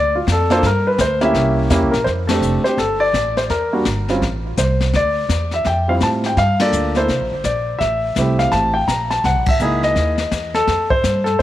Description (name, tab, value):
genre	jazz piano trio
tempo	167 BPM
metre	4/4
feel	swing 64% on 8ths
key	F major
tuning	A4 = 440 Hz
part	warm grand piano	melody	0.0-11.4 s	G3 to Bb5	-17 LUFS	equal	tape echo
part	upright bass	bass	0.0-11.4 s	F1 to A2	-21 LUFS	right 1 dB	none
part	jazz brush drum kit	drums	0.3-11.4 s	brushed snare drum, hi-hat, kick drum, ride cymbal, snare drum	-24 LUFS	left 3 dB	none
room	moderate plate reverb, RT60 1.9 s, small room ambience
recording	1960s-style stereo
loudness	-15 LUFS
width	side -13 dB against mid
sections	0.0-2.1 A section; 2.1-11.4 B section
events	grand piano solo 0.0-2.1; band accent 2.2, 6.6, 9.4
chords	0.0 F6; 0.6 Gm; 1.3 C7b9; 2.1 F69; 3.5 Edim; 4.2 Am; 4.9 Dm11; 6.4 Gm9; 7.1 C5; 7.8 Am7; 9.2 C7alt; 10.7 Fadd9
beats	0.27 | 0.63 0.99 1.35 1.71 | 2.06 2.42 2.78 3.14 | 3.50 3.86 4.22 4.58 | 4.93 5.29 5.65 6.01 | 6.37 6.73 7.09 7.45 | 7.81 8.17 8.53 8.88 | 9.24 9.60 9.96 10.32 | 10.68 11.04 11.40